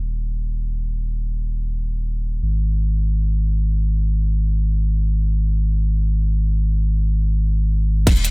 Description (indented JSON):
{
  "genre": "liquid drum and bass",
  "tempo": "free time",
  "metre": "none",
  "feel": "none",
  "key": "unclear",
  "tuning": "A4 = 441 Hz",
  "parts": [
    { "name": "warm sub bass", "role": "bass", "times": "0.0-8.3 s", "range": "Eb1 to Ab1", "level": "-18 LUFS", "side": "equal", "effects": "none" },
    { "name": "drum and bass drum kit", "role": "drums", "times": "8.1-8.3 s", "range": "crash cymbal, hi-hat, shaker", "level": "-22 LUFS", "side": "equal", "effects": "none" },
    { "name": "electronic kick drum", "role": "drums", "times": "8.1 s", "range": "none", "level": "-14 LUFS", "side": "equal", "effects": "none" },
    { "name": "hi-hat", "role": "drums", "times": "8.1-8.3 s", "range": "none", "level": "-30 LUFS", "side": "left 1 dB", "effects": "high-pass filter on hats, high-pass filter on snare, high-pass filter on room" }
  ],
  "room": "little or no reverb",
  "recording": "none",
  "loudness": "-18 LUFS",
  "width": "side -34 dB against mid",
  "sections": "0.0-8.1 A section",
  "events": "none",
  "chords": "none"
}